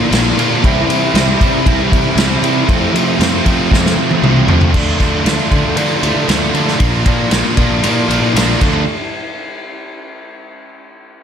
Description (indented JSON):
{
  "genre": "indie rock",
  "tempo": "116 BPM",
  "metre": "4/4",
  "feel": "straight",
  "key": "D minor",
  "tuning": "A4 = 441 Hz",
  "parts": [
    { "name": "biting overdriven guitar", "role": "riff", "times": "0.0-8.8 s", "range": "F2 to F4", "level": "-18 LUFS", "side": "left 7 dB", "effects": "slapback echo" },
    { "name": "biting overdriven guitar", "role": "riff", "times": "0.0-8.8 s", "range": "F2 to E4", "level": "-16 LUFS", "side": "right 8 dB", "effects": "ensemble chorus, digital delay, slapback echo" },
    { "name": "fuzz fingered electric bass", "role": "bass", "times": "0.0-8.9 s", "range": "Bb1 to F3", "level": "-19 LUFS", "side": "equal", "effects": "overdrive" },
    { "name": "vintage drum kit", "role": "drums", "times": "0.1-8.7 s", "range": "crash cymbal, kick drum, ride cymbal, snare drum, toms", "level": "-16 LUFS", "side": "equal", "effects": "none" }
  ],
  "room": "moderate scoring stage reverb, RT60 1.8 s, small room ambience",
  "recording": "big arena sound",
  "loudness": "-11 LUFS",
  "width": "side -8 dB against mid",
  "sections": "0.0-4.7 A section; 4.7-8.9 B section; 8.9-10.9 C section",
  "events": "drum fill 3.7-4.7",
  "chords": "0.0 Bb; 0.6 C; 2.7 F; 4.7 Dm; 6.8 Bb; 8.6 Dm; 8.9 N.C.",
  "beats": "0.12 | 0.63 1.15 1.66 2.17 | 2.69 3.20 3.72 4.23 | 4.75 5.26 5.78 6.29 | 6.81 7.33 7.84 8.36"
}